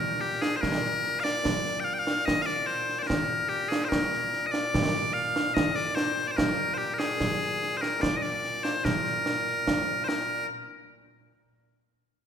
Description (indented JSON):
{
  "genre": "scottish traditional, Scottish pipe music",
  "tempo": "73 BPM",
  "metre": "2/4",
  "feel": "straight",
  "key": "Bb mixolydian",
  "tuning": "A4 = 443 Hz",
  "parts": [
    { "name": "loud bright bagpipes", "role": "melody", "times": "0.0-10.5 s", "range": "Bb2 to G5", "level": "-27 LUFS", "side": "left 2 dB", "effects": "none" },
    { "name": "concert snare drum and concert bass drum", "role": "drums", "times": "0.4-10.5 s", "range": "none", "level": "-29 LUFS", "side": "right 2 dB", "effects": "none" }
  ],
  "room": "moderate concert hall reverb, RT60 1.9 s",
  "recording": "recorded in a church or concert hall",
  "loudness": "-25 LUFS",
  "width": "side -8 dB against mid",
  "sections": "0.0-10.5 A section; 10.5-12.1 B section",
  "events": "none",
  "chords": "none",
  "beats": "| 0.63 1.45 | 2.27 3.10 | 3.92 4.74 | 5.56 6.38 | 7.20 8.03 | 8.85 9.67"
}